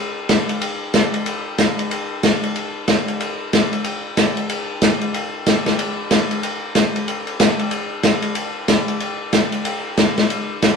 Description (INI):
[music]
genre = jazz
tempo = 186 BPM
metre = 4/4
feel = swing 61% on 8ths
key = none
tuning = none
[part]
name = open jazz drum kit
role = drums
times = 0.3-10.7 s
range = hi-hat, ride cymbal, snare drum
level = -17 LUFS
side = equal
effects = none
[sound]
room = moderate studio reverb, RT60 0.8 s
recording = band playing live in one room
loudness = -17 LUFS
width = side -5 dB against mid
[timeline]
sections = 0.0-10.8 A section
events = none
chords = none